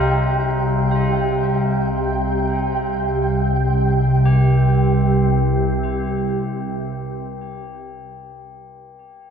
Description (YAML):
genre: dark ambient drone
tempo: free time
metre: none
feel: none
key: unclear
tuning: A4 = 440 Hz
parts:
  - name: tubular bells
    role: arpeggios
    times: 0.0-9.3 s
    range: F4 to C5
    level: -29 LUFS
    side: left 3 dB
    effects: analog delay
  - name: organ-like drone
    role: drone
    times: 0.0-7.7 s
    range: C2 to C3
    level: -18 LUFS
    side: equal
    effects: ensemble chorus, built-in reverb
  - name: flickering grainy texture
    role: texture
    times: 0.0-4.3 s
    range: G5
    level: -26 LUFS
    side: right 2 dB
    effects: built-in reverb, lush chorus
room: wet plate reverb, RT60 3.0 s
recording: dreamy mix soaked in reverb, nothing above 7.8 kHz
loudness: -16 LUFS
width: side -7 dB against mid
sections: 0.0-4.2 A section; 4.2-8.5 B section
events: none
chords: 0.0 C5